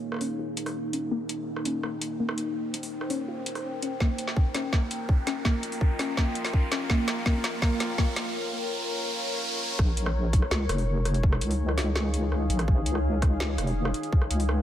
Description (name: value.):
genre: half-time drum and bass.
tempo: 166 BPM.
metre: 4/4.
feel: half-time.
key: Bb dorian.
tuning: A4 = 439 Hz.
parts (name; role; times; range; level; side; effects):
deep dark ambient pad; sustained chords; 0.0-14.6 s; Bb3 to G5; -32 LUFS; left 1 dB; chorus, built-in reverb, sidechain pumping.
riser; sound effects; 0.9-9.8 s; none; -37 LUFS; right 1 dB; none.
drum and bass drum kit; drums; 0.1-14.6 s; hi-hat, rim click, snare drum; -32 LUFS; equal; high-pass filter on hats, high-pass filter on snare, high-pass filter on room.
warbly dusty pluck; arpeggios; 0.2-8.2 s; Bb3 to F4; -32 LUFS; left 1 dB; chorus, phaser, dub echo.
electronic kick drum; drums; 4.0-14.2 s; none; -23 LUFS; equal; none.
deep soft wobble bass; bass; 9.8-14.6 s; F1 to Db2; -26 LUFS; equal; chorus.
room: light reverb.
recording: none.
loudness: -25 LUFS.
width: side -11 dB against mid.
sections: 0.0-9.8 A section; 9.8-14.6 B section.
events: build-up 0.0-9.8; filter sweep on synth pluck 0.0-9.8; riser 0.9-9.8; drum fill 4.0-8.3; break 8.3-9.8; drop 9.8-14.6.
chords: 0.0 Bbm; 4.0 Eb; 9.8 Bbm.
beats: 0.03 0.39 0.75 | 1.11 1.48 1.84 2.20 | 2.56 2.92 3.28 3.64 | 4.00 4.37 4.73 5.09 | 5.45 5.81 6.17 6.54 | 6.90 7.26 7.62 7.98 | 8.34 8.70 9.06 9.43 | 9.79 10.15 10.51 10.87 | 11.23 11.60 11.96 12.32 | 12.68 13.04 13.40 13.76 | 14.13 14.49.